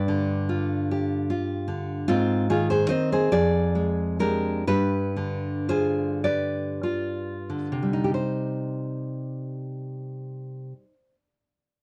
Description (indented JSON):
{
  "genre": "romantic piece for solo classical guitar",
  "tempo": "29-51 BPM (dotted quarters)",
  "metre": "6/8",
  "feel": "rubato",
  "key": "C minor",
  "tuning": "A4 = 440 Hz",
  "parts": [
    { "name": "nylon-string guitar", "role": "solo", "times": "0.0-11.1 s", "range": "F2 to Eb5", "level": "-26 LUFS", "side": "equal", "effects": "none" }
  ],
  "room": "little or no reverb",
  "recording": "dry, close 1970s-style studio recording",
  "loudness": "-26 LUFS",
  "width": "mono",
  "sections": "0.0-8.1 A section; 8.1-11.8 B section",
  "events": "slowing down 0.9-8.1",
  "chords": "0.0 G7; 2.1 Ab6; 3.3 Ddim/F; 4.7 G7; 8.1 Cm"
}